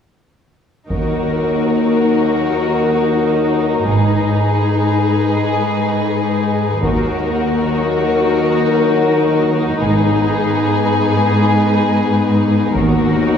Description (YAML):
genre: cinematic, epic orchestral film score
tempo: free time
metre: none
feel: none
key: Eb minor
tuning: A4 = 440 Hz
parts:
  - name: warm symphonic violin section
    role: melody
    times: 0.9-13.4 s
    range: Bb4 to Cb5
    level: -25 LUFS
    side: left 2 dB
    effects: none
  - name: warm symphonic violin section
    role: second line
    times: 0.9-13.4 s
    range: Gb4 to Ab4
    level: -21 LUFS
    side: left 3 dB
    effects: none
  - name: warm symphonic viola section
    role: accompaniment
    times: 0.9-13.4 s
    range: Eb4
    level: -20 LUFS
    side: left 2 dB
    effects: none
  - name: mellow French horn section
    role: sustained chords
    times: 0.9-13.4 s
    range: Gb3 to Cb5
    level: -20 LUFS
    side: left 4 dB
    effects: none
  - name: rich symphonic cello section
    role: bass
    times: 0.9-13.4 s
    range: Eb2 to Ab2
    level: -18 LUFS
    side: right 1 dB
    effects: none
  - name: warm studio double bass section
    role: bass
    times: 0.9-13.2 s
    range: Ab1 to Eb2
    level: -22 LUFS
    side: right 2 dB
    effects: none
  - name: solo taiko drums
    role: drums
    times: 0.9-1.9, 6.8-7.8, 12.8-13.4 s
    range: none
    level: -25 LUFS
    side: equal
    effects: none
room: wet concert hall reverb, RT60 2.1 s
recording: recorded in a church or concert hall, studio ambience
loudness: -13 LUFS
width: side -7 dB against mid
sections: 0.9-13.4 A section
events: build-up 0.9-13.4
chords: 0.9 Ebm; 3.9 Abm; 6.8 Ebm; 9.8 Abm; 12.8 Ebm